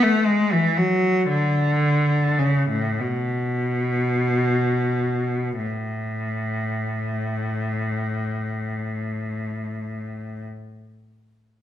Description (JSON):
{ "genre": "classical, free, expressive piece for unaccompanied cello", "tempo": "19-42 BPM (dotted quarters)", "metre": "6/8", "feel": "rubato", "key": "A major", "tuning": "A4 = 440 Hz", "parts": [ { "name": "rich cello", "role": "solo", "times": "0.0-10.5 s", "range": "A2 to A3", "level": "-21 LUFS", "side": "equal", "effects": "none" } ], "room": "wet recital hall reverb, RT60 1.3 s", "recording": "minimal, uncompressed stereo recording", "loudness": "-21 LUFS", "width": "side -11 dB against mid", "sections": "0.0-5.6 A section; 5.6-10.2 B section", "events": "slowing down 0.0-5.6", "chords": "none" }